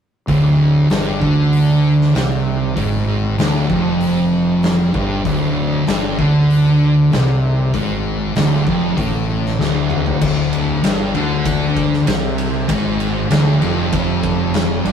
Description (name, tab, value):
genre	stoner and doom metal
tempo	97 BPM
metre	4/4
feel	straight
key	D minor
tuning	A4 = 440 Hz
part	thick fuzz guitar	riff	0.3-14.9 s	D2 to D3	-17 LUFS	left 4 dB	distortion
part	thick fuzz guitar	riff	0.3-14.9 s	D2 to D3	-19 LUFS	right 7 dB	distortion
part	fuzz fingered electric bass	bass	0.3-14.9 s	D1 to D2	-23 LUFS	equal	overdrive
part	oversized low-tuned drum kit	drums	0.3-14.9 s	crash cymbal, hi-hat, kick drum, ride cymbal, snare drum, toms	-22 LUFS	left 1 dB	none
room	moderate studio reverb, RT60 0.6 s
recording	rough rehearsal-room recording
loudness	-14 LUFS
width	side -8 dB against mid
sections	0.3-10.2 A section; 10.2-14.9 B section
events	drum fill 9.6-10.2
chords	0.3 Dm